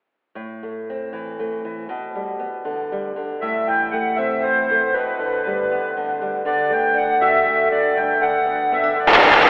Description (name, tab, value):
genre	folk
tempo	118 BPM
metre	3/4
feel	straight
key	A dorian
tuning	A4 = 445 Hz
part	nylon-string guitar	accompaniment	0.4-9.5 s	G2 to F#4	-26 LUFS	equal	none
part	accordion	second line	3.4-9.3 s	B4 to G5	-21 LUFS	equal	light tremolo tuning
room	wet cathedral reverb, RT60 5.9 s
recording	recorded in a church or concert hall, telephone sound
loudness	-20 LUFS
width	mono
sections	0.4-3.4 A section; 3.4-9.5 B section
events	accordion solo 3.4-9.5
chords	0.4 Am; 1.9 G/B; 3.4 Am; 4.9 G/B; 6.5 D; 8.0 G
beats	| 0.36 0.86 1.37 | 1.88 2.39 2.90 | 3.41 3.91 4.42 | 4.93 5.43 5.94 | 6.45 6.96 7.46 | 7.97 8.48 8.99